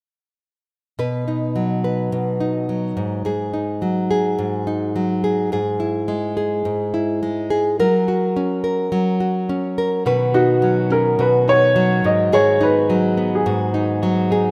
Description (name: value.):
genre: pop.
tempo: 106 BPM.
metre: 4/4.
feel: swing 55% on 16ths.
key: B major.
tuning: A4 = 440 Hz.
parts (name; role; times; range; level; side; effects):
nylon-string guitar; accompaniment; 1.0-14.5 s; G#2 to B4; -20 LUFS; equal; none.
direct-recorded clean electric guitar; arpeggios; 10.1-14.5 s; D#3 to F#4; -33 LUFS; equal; none.
warm upright piano; melody; 10.3-14.3 s; F#4 to D#5; -20 LUFS; equal; none.
room: moderate lush hall reverb, RT60 3.1 s.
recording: rough home demo mix.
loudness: -19 LUFS.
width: mono.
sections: 1.0-10.1 A section; 10.1-14.5 B section.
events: none.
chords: 1.0 B; 3.0 G#5; 5.5 E/G#; 7.8 F#; 10.1 Badd9; 12.0 G#m7.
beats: | 0.99 1.56 2.12 2.69 | 3.26 3.82 4.39 4.96 | 5.53 6.09 6.66 7.23 | 7.79 8.36 8.93 9.49 | 10.06 10.63 11.20 11.76 | 12.33 12.89 13.46 14.03.